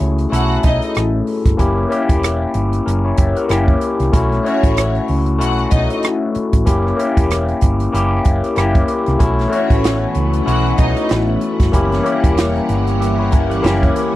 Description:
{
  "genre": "lush 1970s-style soul",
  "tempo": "95 BPM",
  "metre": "4/4",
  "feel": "swing 58% on 16ths",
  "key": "unclear",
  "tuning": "A4 = 441 Hz",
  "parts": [
    { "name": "overdriven tine electric piano", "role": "accompaniment", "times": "0.0-14.2 s", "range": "A3 to F#5", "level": "-17 LUFS", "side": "left 3 dB", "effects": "phaser" },
    { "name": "hollow-body short-scale fingered electric bass", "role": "bass", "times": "0.0-13.9 s", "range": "E1 to C#2", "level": "-18 LUFS", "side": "right 1 dB", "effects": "none" },
    { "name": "compact cocktail drum kit", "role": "drums", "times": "0.0-14.1 s", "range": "hi-hat, kick drum, rim click, snare drum", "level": "-16 LUFS", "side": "right 1 dB", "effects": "none" },
    { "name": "warm studio string section", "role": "second line", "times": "0.3-11.0 s", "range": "C#4 to F#5", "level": "-23 LUFS", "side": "right 2 dB", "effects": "none" },
    { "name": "string machine, violins", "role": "sustained chords", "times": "9.2-14.2 s", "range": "E3 to F#5", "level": "-24 LUFS", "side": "equal", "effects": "ensemble chorus" },
    { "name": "vibraphone with soft mallets", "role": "texture", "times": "12.6-13.6 s", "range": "E5 to A#5", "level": "-29 LUFS", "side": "right 3 dB", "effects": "stereo widening" }
  ],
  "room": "little or no reverb",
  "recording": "dry, close 1970s-style studio recording",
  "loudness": "-13 LUFS",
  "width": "side -15 dB against mid",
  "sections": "0.0-14.2 A section",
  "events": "none",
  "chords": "0.0 B9sus4; 1.6 F#7b9; 4.1 B9sus4; 6.7 F#7b9; 9.2 B9sus4; 11.7 F#7b9"
}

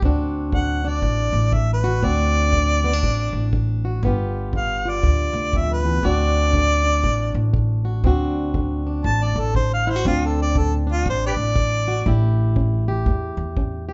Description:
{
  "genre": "acoustic country blues, solo or duo",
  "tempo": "120 BPM",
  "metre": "4/4",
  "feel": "swing 61% on 8ths",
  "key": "D mixolydian",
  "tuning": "A4 = 440 Hz",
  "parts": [
    { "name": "fingerpicked plugged-in swing-style acoustic guitar", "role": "accompaniment", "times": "0.0-13.9 s", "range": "D2 to G4", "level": "-29 LUFS", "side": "equal", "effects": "none" },
    { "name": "upright bass", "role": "bass", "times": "0.0-13.9 s", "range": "G1 to E2", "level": "-23 LUFS", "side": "equal", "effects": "none" },
    { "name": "kick drum", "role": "drums", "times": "0.0-13.7 s", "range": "none", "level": "-28 LUFS", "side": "equal", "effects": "none" },
    { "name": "clear harmonica", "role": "melody", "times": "0.5-12.2 s", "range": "F4 to A5", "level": "-25 LUFS", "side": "equal", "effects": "none" }
  ],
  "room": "light reverb",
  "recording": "band playing live in one room, nothing above 7.7 kHz",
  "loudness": "-21 LUFS",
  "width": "mono",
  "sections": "0.0-13.9 A section",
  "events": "harmonica solo 0.0-13.9",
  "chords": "0.0 D7; 4.0 G7; 6.0 D7; 12.1 A7"
}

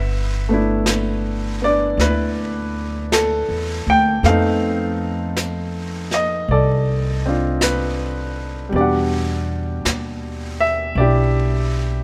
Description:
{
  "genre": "jazz ballad",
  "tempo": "53 BPM",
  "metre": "4/4",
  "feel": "swing 68% on 8ths",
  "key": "G major",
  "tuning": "A4 = 440 Hz",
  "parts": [
    { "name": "warm concert grand piano", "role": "accompaniment", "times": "0.0-12.0 s", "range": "B2 to G5", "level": "-22 LUFS", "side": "equal", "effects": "none" },
    { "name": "upright bass", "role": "bass", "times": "0.0-12.0 s", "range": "G1 to F2", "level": "-24 LUFS", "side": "equal", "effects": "none" },
    { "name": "jazz brush drum kit", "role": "drums", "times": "0.9-12.0 s", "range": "brushed snare drum, hi-hat, snare drum", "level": "-29 LUFS", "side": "equal", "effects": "none" }
  ],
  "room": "light reverb",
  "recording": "none",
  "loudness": "-20 LUFS",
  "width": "mono",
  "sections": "0.0-12.0 A section",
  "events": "none",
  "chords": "0.0 G69; 4.2 F7#11; 8.7 Em9"
}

